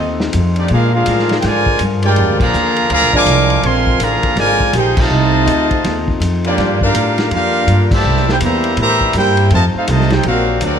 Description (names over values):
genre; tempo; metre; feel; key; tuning
jazz, big band swing; 163 BPM; 4/4; swing 63% on 8ths; F major; A4 = 440 Hz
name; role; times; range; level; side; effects
brilliant trumpet section; melody; 0.0-10.8 s; Bb3 to D6; -16 LUFS; equal; plate reverb
muted trombone section; second line; 0.0-10.8 s; Bb2 to Bb4; -19 LUFS; right 2 dB; none
clear trombone section; sustained chords; 0.0-10.8 s; C3 to Bb4; -23 LUFS; left 4 dB; none
upright bass; bass; 0.0-10.8 s; Ab1 to Bb2; -16 LUFS; equal; none
vintage drum kit; drums; 0.2-10.7 s; crash cymbal, hi-hat, kick drum, ride cymbal, snare drum; -21 LUFS; left 1 dB; none
room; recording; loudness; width
moderate large studio reverb, RT60 1.1 s; none; -11 LUFS; side -8 dB against mid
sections
0.0-10.8 A section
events
band accent 2.4, 4.9, 7.9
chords
0.0 F7; 0.7 Bb7; 5.1 F7; 6.6 Gm7; 8.0 C7; 9.5 F7; 10.3 D7alt